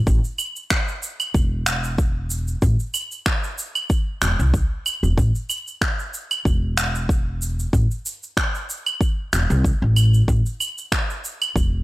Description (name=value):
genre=organic downtempo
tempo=94 BPM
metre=4/4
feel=swing 54% on 16ths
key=A minor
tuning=A4 = 440 Hz
part: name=upright bass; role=bass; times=0.1-11.8 s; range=E1 to C2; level=-20 LUFS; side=equal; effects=sidechain pumping
part: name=electronic kick drum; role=drums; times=0.1-11.7 s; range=none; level=-21 LUFS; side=equal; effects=none
part: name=electronic shaker, claves and finger snaps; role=drums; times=0.1-11.7 s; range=none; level=-24 LUFS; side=right 1 dB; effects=overdrive
room=little or no reverb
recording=dry, gritty hardware recording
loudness=-19 LUFS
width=side -18 dB against mid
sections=0.0-11.8 A section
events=none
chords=none